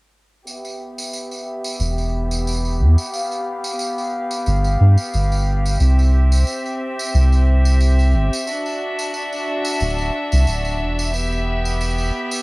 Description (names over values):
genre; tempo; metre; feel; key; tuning
trip hop; 90 BPM; 4/4; swing 55% on 16ths; E minor; A4 = 440 Hz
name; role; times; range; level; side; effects
bright chamber violin section; sustained chords; 0.5-12.4 s; B3 to F5; -24 LUFS; equal; low-pass filter, cassette tape
tambourine; percussion; 0.5-12.4 s; none; -30 LUFS; right 2 dB; none
soft dub sub bass; bass; 1.8-12.1 s; D1 to G2; -15 LUFS; equal; tube saturation
room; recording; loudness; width
studio ambience; home recording on cassette; -16 LUFS; side -25 dB against mid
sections
0.5-12.4 A section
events
filter sweep on violin section 0.5-12.4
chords
0.5 Em; 3.1 G7; 5.8 C; 8.5 Dadd9; 11.1 Em